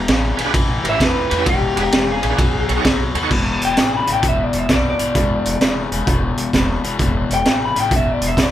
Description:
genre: electric blues shuffle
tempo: 130 BPM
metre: 4/4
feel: swing 66% on 8ths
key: unclear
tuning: A4 = 440 Hz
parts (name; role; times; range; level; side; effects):
- crunchy overdriven guitar; riff; 0.0-8.5 s; E2 to F#3; -23 LUFS; left 5 dB; none
- upright bass; bass; 0.0-8.5 s; E1 to E2; -24 LUFS; equal; none
- raw garage drum kit; drums; 0.1-8.5 s; crash cymbal, hi-hat, kick drum, ride cymbal, snare drum; -18 LUFS; right 1 dB; none
- bright tonewheel organ; accompaniment; 0.4-3.3 s; C#4 to C#5; -23 LUFS; right 5 dB; slow rotary speaker, overdrive, chorus vibrato
- electric guitar through a small old amp; melody; 0.9-8.5 s; G4 to B5; -20 LUFS; left 2 dB; none
room: light reverb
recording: band playing live in one room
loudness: -15 LUFS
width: side -12 dB against mid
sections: 0.0-3.3 A section; 3.3-8.5 B section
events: clean electric guitar solo 0.0-3.3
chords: 0.0 E7; 0.5 A7; 1.5 E7; 2.4 B7; 3.3 E7(no3)

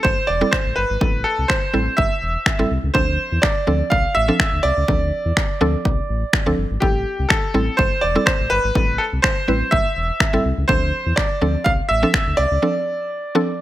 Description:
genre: dance-pop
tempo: 124 BPM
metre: 4/4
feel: straight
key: A minor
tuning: A4 = 440 Hz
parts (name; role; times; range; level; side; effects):
- bright grand piano; melody; 0.0-13.6 s; G4 to F5; -20 LUFS; right 1 dB; tape echo
- mallet-like synth pluck; accompaniment; 0.0-13.6 s; F3 to B4; -22 LUFS; right 1 dB; chorus, sidechain pumping
- sub bass with octave; bass; 0.0-12.6 s; E1 to E2; -22 LUFS; equal; sidechain pumping
- punchy analog drum machine; drums; 0.0-12.3 s; finger snaps, kick drum; -19 LUFS; equal; none
room: light reverb, digital ambience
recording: none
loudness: -16 LUFS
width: side -14 dB against mid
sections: 0.0-13.6 A section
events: break 12.6-13.6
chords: 0.0 Am7; 2.9 Dm7; 6.8 Am7; 10.7 Dm7

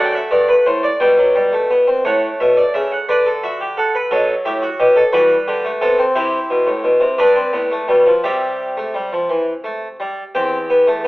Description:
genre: classical, baroque-style 4-part fugue for harpsichord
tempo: 58 BPM (dotted quarters)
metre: 6/8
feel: straight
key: C major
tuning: A4 = 439 Hz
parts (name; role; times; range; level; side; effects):
- harpsichord; solo; 0.0-11.1 s; E2 to G5; -14 LUFS; equal; none
room: moderate stone room reverb, RT60 0.9 s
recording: telephone sound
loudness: -14 LUFS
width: side -19 dB against mid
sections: 0.0-2.0 A section; 2.0-10.3 B section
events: none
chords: 0.0 D7/F#; 1.0 G/B; 2.0 A; 3.1 D; 4.1 B7; 5.1 Em; 6.2 C; 7.2 G7; 8.2 C; 10.3 C/E

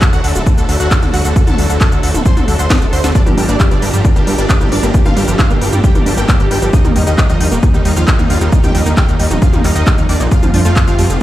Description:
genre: uplifting trance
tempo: 134 BPM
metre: 4/4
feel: straight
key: G minor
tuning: A4 = 440 Hz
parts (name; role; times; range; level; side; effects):
- supersaw stab; melody; 0.0-11.2 s; D4 to C6; -21 LUFS; right 1 dB; lush chorus, sidechain pumping, digital delay
- filtered supersaw swell; sustained chords; 0.0-11.2 s; F3 to Bb4; -23 LUFS; left 1 dB; sidechain pumping
- electronic kick drum; drums; 0.0-10.9 s; none; -13 LUFS; equal; none
- techno drum kit; drums; 0.0-11.2 s; handclaps, hi-hat, shaker, snare drum, toms; -19 LUFS; left 1 dB; sidechain pumping on hats, sidechain pumping on perc, sidechain pumping on toms
- gritty driven synth bass; bass; 0.1-11.2 s; D1 to G2; -15 LUFS; equal; sidechain pumping
- wide unison pluck; arpeggios; 3.2-11.2 s; G2 to G4; -21 LUFS; right 2 dB; sidechain pumping, dub echo
room: little or no reverb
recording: played on a big sound system in a bare room, large studio reverb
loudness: -10 LUFS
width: side -14 dB against mid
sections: 0.0-11.2 A section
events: drum fill 2.7-3.2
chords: 0.0 D; 3.2 Gm7; 6.7 Eb; 10.3 F

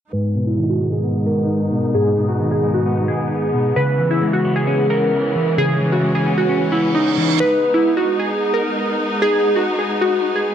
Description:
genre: hip hop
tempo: 132 BPM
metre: 4/4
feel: half-time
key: G# minor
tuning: A4 = 439 Hz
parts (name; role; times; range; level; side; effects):
- glassy digital keys; melody; 0.1-10.5 s; D#4 to B4; -18 LUFS; equal; chorus, low-pass filter
- semi-hollow electric guitar; accompaniment; 0.1-7.4 s; G#2 to C#4; -19 LUFS; equal; low-pass filter
- warm symphonic string section; sustained chords; 0.1-10.5 s; G#2 to D#4; -23 LUFS; equal; low-pass filter
- reverse cymbal; sound effects; 6.7-7.4 s; none; -25 LUFS; right 9 dB; none
room: light reverb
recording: dry, gritty hardware recording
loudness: -15 LUFS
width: side -9 dB against mid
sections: 0.1-7.4 A section; 7.4-10.5 B section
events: filter sweep 0.1-7.4; reverse cymbal 6.7-7.4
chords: 0.1 G#m; 3.8 C#m7; 7.4 G#m

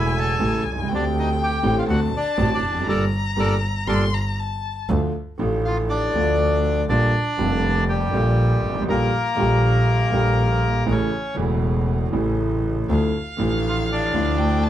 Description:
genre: tango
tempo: 120 BPM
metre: 4/4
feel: rubato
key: G minor, D harmonic minor from 4.9 s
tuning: A4 = 441 Hz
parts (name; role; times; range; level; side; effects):
- bandoneon; melody; 0.0-14.7 s; G3 to A5; -24 LUFS; left 2 dB; plate reverb
- warm violin; second line; 0.0-4.9, 12.9-14.7 s; F5 to C6; -28 LUFS; left 4 dB; none
- warm concert grand piano; accompaniment; 0.0-14.7 s; E1 to G4; -23 LUFS; right 1 dB; none
- clear double bass; bass; 0.0-14.7 s; E1 to D2; -22 LUFS; equal; none
room: light reverb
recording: none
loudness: -19 LUFS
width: side -11 dB against mid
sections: 0.0-4.9 A section; 4.9-14.7 B section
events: band accent 2.9-4.9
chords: 0.0 A; 0.9 D7sus4; 1.9 D7; 2.9 Gmadd9; 4.9 Dm; 6.9 Bb6; 8.9 Gm/Bb; 10.9 A; 12.9 Dmadd9

